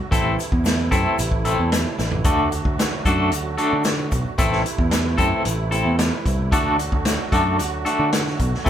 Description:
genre	psychedelic rock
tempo	112 BPM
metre	4/4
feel	straight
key	unclear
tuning	A4 = 441 Hz
part	musette accordion	sustained chords	0.0-8.7 s	C3 to F#4	-29 LUFS	right 5 dB	none
part	twangy electric guitar	riff	0.1-8.7 s	A3 to A4	-22 LUFS	left 1 dB	tremolo
part	overdriven picked electric bass	bass	0.1-8.7 s	A1 to D3	-24 LUFS	equal	none
part	vintage drum kit	drums	0.1-8.7 s	hi-hat, kick drum, snare drum, toms	-23 LUFS	equal	none
part	egg shaker	percussion	0.1-8.7 s	none	-36 LUFS	left 9 dB	none
room	light reverb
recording	band playing live in one room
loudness	-18 LUFS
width	side -10 dB against mid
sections	0.0-8.7 A section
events	drum fill 2.0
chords	0.1 Am; 2.3 D; 4.4 Am; 6.5 D

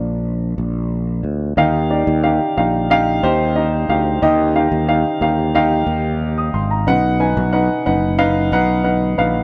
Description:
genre	piano-driven pop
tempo	91 BPM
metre	4/4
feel	straight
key	Eb major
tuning	A4 = 440 Hz
part	dark upright piano	accompaniment	0.0-9.4 s	B2 to Eb6	-19 LUFS	equal	none
part	sustaining fretless electric bass	bass	0.0-9.4 s	F#1 to Eb2	-22 LUFS	equal	none
room	light reverb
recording	dark, warm production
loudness	-17 LUFS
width	mono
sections	0.0-1.6 A section; 1.6-9.4 B section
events	upright piano solo 0.0-1.6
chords	0.0 Bb; 1.6 Ebadd9; 6.9 B

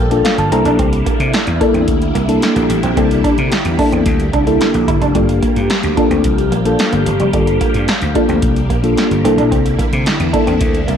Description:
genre	early-eighties boogie funk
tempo	110 BPM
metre	4/4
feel	straight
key	unclear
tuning	A4 = 440 Hz
part	mellow FM electric piano	accompaniment	0.0-10.8 s	Bb3 to Bb5	-16 LUFS	left 2 dB	chorus, phaser
part	phased string machine	sustained chords	0.0-11.0 s	D3 to A4	-21 LUFS	equal	ensemble chorus, phaser
part	electric guitar at the edge of break-up	riff	0.0-11.0 s	G3 to E4	-21 LUFS	right 3 dB	wide subtle chorus
part	vintage slap bass	bass	0.0-11.0 s	F1 to C3	-18 LUFS	equal	none
part	electro analog drum machine	drums	0.1-11.0 s	hi-hat, kick drum, snare drum	-18 LUFS	equal	none
room	light reverb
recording	none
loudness	-12 LUFS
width	side -8 dB against mid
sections	0.0-11.0 A section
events	FM electric piano fill 0.0-0.8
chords	0.0 Gm9; 0.5 C13; 5.2 Gm9; 9.2 C13

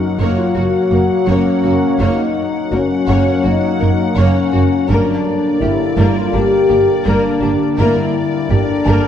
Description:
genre	cinematic, hybrid orchestral and electronic film score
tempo	83 BPM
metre	4/4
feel	straight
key	unclear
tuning	A4 = 440 Hz
part	rich symphonic violin section	melody	0.0-9.1 s	D5 to Gb5	-30 LUFS	left 4 dB	none
part	bright trombone section	sustained chords	0.0-9.1 s	D3 to Bb3	-24 LUFS	right 5 dB	none
part	deep dark ambient pad	sustained chords	0.0-9.1 s	D3 to Db5	-22 LUFS	left 2 dB	chorus, built-in reverb
part	mellow French horn section	sustained chords	0.0-9.0 s	Db4 to G4	-16 LUFS	left 4 dB	none
part	glassy wavetable pluck	arpeggios	0.0-9.1 s	Gb3 to G4	-25 LUFS	left 1 dB	chorus, digital delay
part	felt-muted upright piano	texture	0.0-9.1 s	Gb5 to F6	-33 LUFS	left 1 dB	none
part	warm symphonic violin section	second line	0.2-9.1 s	D4 to Db5	-24 LUFS	left 1 dB	none
part	warm symphonic viola section	accompaniment	0.2-9.1 s	Bb3	-24 LUFS	right 1 dB	none
part	rich symphonic double bass section	bass	0.2-8.9 s	Gb1 to G1	-21 LUFS	right 2 dB	none
part	warm symphonic cello section	bass	0.2-9.0 s	Gb2 to G2	-21 LUFS	right 2 dB	none
room	wet scoring stage reverb, RT60 2.1 s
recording	dark, warm production, nothing above 10.6 kHz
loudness	-12 LUFS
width	side -9 dB against mid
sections	0.0-9.1 A section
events	none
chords	0.0 Gb; 4.9 Gm

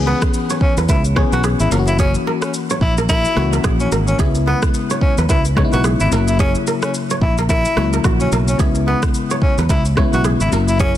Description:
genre	afrobeats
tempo	109 BPM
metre	4/4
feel	swing 58% on 16ths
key	C# dorian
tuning	A4 = 440 Hz
part	FM electric piano	accompaniment	0.0-11.0 s	C#3 to G#4	-21 LUFS	left 5 dB	chorus
part	fingered electric bass	bass	0.0-10.9 s	F#1 to E2	-18 LUFS	right 1 dB	none
part	breathy tenor saxophone	melody	0.1-10.9 s	B3 to F#4	-22 LUFS	equal	tape echo
part	kora	riff	0.1-10.9 s	F#4 to C#5	-24 LUFS	right 4 dB	tape echo
part	deep house drum kit	drums	0.2-11.0 s	kick drum, rim click, shaker	-19 LUFS	equal	vintage 12-bit sampler grit, soft clipping on snare
room	light reverb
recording	dense, heavily limited modern master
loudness	-14 LUFS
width	side -12 dB against mid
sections	0.0-11.0 A section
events	none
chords	0.0 C#m7; 1.7 F#7; 4.2 C#m7; 6.1 F#7; 8.6 C#m7

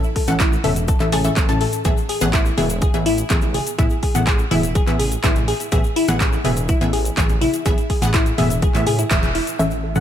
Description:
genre	progressive house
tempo	124 BPM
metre	4/4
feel	straight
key	unclear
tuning	A4 = 440 Hz
part	egg shaker	percussion	0.0-10.0 s	none	-33 LUFS	left 5 dB	none
part	glassy wavetable pluck	arpeggios	0.2-9.9 s	A3 to A5	-24 LUFS	left 2 dB	chorus, sidechain pumping, tape echo
part	deep house drum kit	drums	0.2-10.0 s	crash cymbal, handclaps, hi-hat	-26 LUFS	equal	overdrive, low-pass filter on hats, low-pass filter on snare, low-pass filter on cymbals
part	electronic kick drum	drums	0.2-9.2 s	none	-19 LUFS	equal	overdrive
part	wide unison pluck	stabs	0.3-10.0 s	A2 to A5	-22 LUFS	left 1 dB	sidechain pumping, tape echo
part	dark detuned saw bass	bass	0.3-10.0 s	E1 to A2	-24 LUFS	right 1 dB	sidechain pumping
part	congas and bongos	percussion	0.3-10.0 s	none	-30 LUFS	equal	none
part	lush unison pad	sustained chords	9.8-10.0 s	A3 to E4	-38 LUFS	left 1 dB	none
room	light reverb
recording	none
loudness	-16 LUFS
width	side -10 dB against mid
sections	0.0-9.6 A section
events	band accent 9.1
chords	0.0 A; 1.9 E

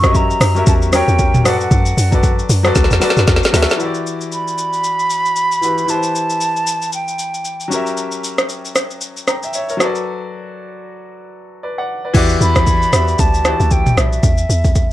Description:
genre	amapiano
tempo	115 BPM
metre	4/4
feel	swing 58% on 16ths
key	E minor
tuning	A4 = 440 Hz
part	hollow concert flute	melody	0.0-7.7, 12.4-14.9 s	E5 to C#6	-19 LUFS	right 2 dB	analog delay
part	clear concert grand piano	accompaniment	0.0-14.3 s	E3 to A#5	-20 LUFS	left 3 dB	none
part	deep log drum bass	bass	0.0-3.7, 12.1-14.9 s	B1 to F#2	-16 LUFS	equal	none
part	afro-pop drum kit	drums	0.0-14.9 s	crash cymbal, hi-hat, kick drum, rim click, shaker, snare drum, toms	-16 LUFS	equal	overdrive
room	little or no reverb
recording	dry, gritty hardware recording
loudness	-13 LUFS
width	side -14 dB against mid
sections	0.0-3.8 A section; 3.8-12.1 B section; 12.1-14.9 C section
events	drop 0.0-3.8; drum fill 2.8-3.8; break 10.1-12.1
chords	0.0 F#7b9; 1.4 Bm7/F#; 3.8 Em9; 5.9 Am7/E; 7.7 F#7b9; 9.8 Bm7/F#; 12.1 Em9; 14.2 N.C.

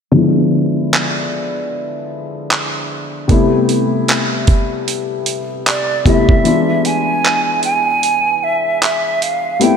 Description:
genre	contemporary R&B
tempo	76 BPM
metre	4/4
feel	swing 58% on 16ths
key	unclear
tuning	A4 = 440 Hz
part	felt-muted upright piano	accompaniment	0.1-9.8 s	C3 to F4	-16 LUFS	left 2 dB	low-pass filter
part	dusty soul sampler-style drum kit	drums	0.9-9.8 s	handclaps, hi-hat, kick drum	-16 LUFS	right 1 dB	none
part	hollow concert flute	melody	5.7-9.8 s	D5 to G#5	-15 LUFS	right 3 dB	ping-pong delay
room	wet lush hall reverb, RT60 2.4 s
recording	dreamy mix soaked in reverb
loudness	-13 LUFS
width	side -6 dB against mid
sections	0.1-6.5 A section; 6.5-9.8 B section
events	filter sweep on felt piano 0.1-6.5; kick muted 6.5-9.8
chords	0.1 E7b9; 3.3 Am7; 6.5 E7b9

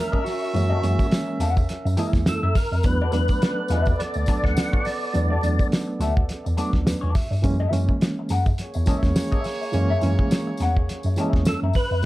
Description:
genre	funk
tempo	104 BPM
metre	4/4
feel	swing 56% on 16ths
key	F# mixolydian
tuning	A4 = 440 Hz
part	percussive tonewheel organ	melody	0.0-5.7, 11.5-12.1 s	F#4 to F#5	-27 LUFS	equal	overdrive, chorus vibrato, slow rotary speaker, plate reverb
part	warm horn section	second line	0.0-11.7 s	A#3 to E5	-32 LUFS	right 2 dB	plate reverb
part	barky reed electric piano	stabs	0.0-12.1 s	E3 to E5	-28 LUFS	right 2 dB	overdrive, fast tremolo, plate reverb
part	electric guitar at the edge of break-up	accompaniment	0.1-12.0 s	F#4 to F#5	-31 LUFS	left 4 dB	wah, plate reverb
part	cloth-damped thuddy drum kit	drums	0.1-11.9 s	hi-hat, kick drum, snare drum	-23 LUFS	equal	none
part	tambourine	percussion	0.3-12.1 s	none	-43 LUFS	left 4 dB	none
part	mellow tine electric piano	bass	0.5-12.0 s	D2 to G2	-23 LUFS	equal	medium stereo tremolo
room	light reverb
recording	dark, warm production, vinyl crackle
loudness	-20 LUFS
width	side -17 dB against mid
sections	0.0-12.1 A section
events	reed electric piano fill 6.6-7.4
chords	0.0 F#9; 2.8 E9sus4; 7.4 F#9

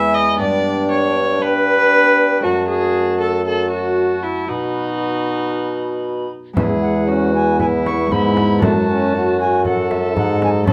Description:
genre	classical, renaissance-style consort dance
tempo	117 BPM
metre	4/4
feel	straight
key	E major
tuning	A4 = 436 Hz
part	mellow alto recorder	melody	0.0-10.7 s	E5 to C#6	-28 LUFS	equal	none
part	rich viola	second line	0.0-10.7 s	D#4 to E5	-22 LUFS	equal	none
part	bright trombone	accompaniment	0.0-10.7 s	A3 to F#4	-24 LUFS	equal	none
part	concert harp	accompaniment	0.0-10.7 s	E2 to C#5	-25 LUFS	equal	none
part	mellow bassoon	bass	0.0-10.7 s	E2 to B2	-23 LUFS	equal	none
part	frame drum	percussion	6.6-10.7 s	none	-24 LUFS	equal	none
room	light reverb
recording	none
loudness	-17 LUFS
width	mono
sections	0.0-6.6 A section; 6.6-10.7 A section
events	none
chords	0.4 G; 2.4 F#m; 4.5 B; 6.6 E; 8.6 F#m

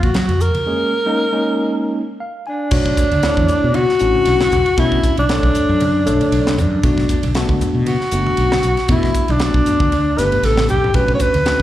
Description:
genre	electric jazz fusion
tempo	117 BPM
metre	4/4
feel	swing 55% on 16ths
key	B minor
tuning	A4 = 440 Hz
part	breathy alto saxophone	melody	0.0-11.6 s	D4 to C#5	-17 LUFS	left 1 dB	slapback echo
part	mellow fretless electric bass	bass	0.0-11.6 s	F#1 to Gb3	-18 LUFS	equal	none
part	crisp fusion drum kit	drums	0.0-11.6 s	crash cymbal, hi-hat, kick drum, ride cymbal, snare drum	-21 LUFS	equal	none
part	congas	percussion	0.3-11.5 s	none	-26 LUFS	right 1 dB	slapback echo
part	barky tine electric piano	accompaniment	0.7-11.6 s	Ab3 to Ab5	-22 LUFS	equal	medium stereo tremolo, slapback echo
room	studio reverb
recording	live gig heard through the venue's PA, club reverb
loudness	-14 LUFS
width	side -13 dB against mid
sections	0.0-2.7 A section; 2.7-11.6 B section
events	break 0.7-2.7; tine electric piano fill 2.0-2.7; drum fill 10.3-10.9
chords	0.0 Gbmaj7 (rootless); 2.7 Bm9; 6.8 Gmaj7; 10.9 Bm9

